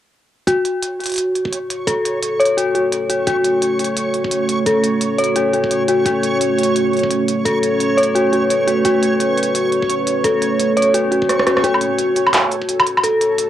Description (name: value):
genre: half-time drum and bass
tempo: 172 BPM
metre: 4/4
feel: swing 60% on 16ths, half-time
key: F# minor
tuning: A4 = 440 Hz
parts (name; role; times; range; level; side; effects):
- deep dark ambient pad; sustained chords; 2.8-13.5 s; A3 to C#5; -22 LUFS; right 2 dB; chorus, built-in reverb, sidechain pumping, cassette tape
- dark detuned synth bell; arpeggios; 0.5-13.5 s; F#4 to C#5; -17 LUFS; left 2 dB; chorus, low-pass filter, cassette tape, tape echo
- electronic kick drum; drums; 0.5-13.1 s; none; -26 LUFS; equal; high-pass filter on kick, high-pass filter on room
- organic electronic drum kit; drums; 0.5-13.5 s; handclaps, hi-hat, rim click, shaker, woodblock; -20 LUFS; right 1 dB; none
- backwards swelling texture; texture; 1.5-13.5 s; A4 to C#5; -23 LUFS; right 2 dB; built-in reverb, cassette tape
room: moderate small room reverb, RT60 0.5 s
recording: home recording on cassette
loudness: -14 LUFS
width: side -11 dB against mid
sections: 0.5-11.6 A section; 11.6-13.5 B section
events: filter sweep on ambient pad 0.5-11.6, 11.6-13.5; drum fill 11.3-11.6; build-up 11.6-13.5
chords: 0.5 F#m